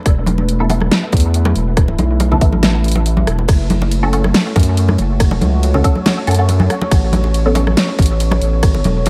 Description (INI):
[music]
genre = deep dubstep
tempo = 140 BPM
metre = 4/4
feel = swing 53% on 16ths, half-time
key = unclear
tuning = A4 = 441 Hz
[part]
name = deep dark ambient pad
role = sustained chords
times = 0.0-9.1 s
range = A3 to C#5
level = -25 LUFS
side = equal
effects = chorus, built-in reverb
[part]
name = saturated sub bass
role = bass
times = 0.1-9.1 s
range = E1 to F#2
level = -17 LUFS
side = equal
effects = none
[part]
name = dubstep drum kit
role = drums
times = 0.1-9.1 s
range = hi-hat, ride cymbal, rim click, snare drum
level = -21 LUFS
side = equal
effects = none
[part]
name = electronic kick drum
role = drums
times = 0.1-8.7 s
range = none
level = -15 LUFS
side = equal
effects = none
[part]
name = congas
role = percussion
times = 0.3-9.1 s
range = none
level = -23 LUFS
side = equal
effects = dub echo
[part]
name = filtered dub chord stab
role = stabs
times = 0.6-7.7 s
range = B3 to A4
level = -25 LUFS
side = equal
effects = phaser, ensemble chorus, dub echo
[sound]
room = light reverb, digital ambience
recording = echo-heavy mix, vinyl crackle, faint mains hum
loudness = -14 LUFS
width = mono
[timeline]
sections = 0.0-9.1 A section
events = none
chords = 0.1 Esus4; 3.5 F#m; 6.9 Aadd9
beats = | 0.06 0.49 0.92 1.34 | 1.77 2.20 2.63 3.06 | 3.49 3.92 4.34 4.77 | 5.20 5.63 6.06 6.49 | 6.92 7.34 7.77 8.20 | 8.63 9.06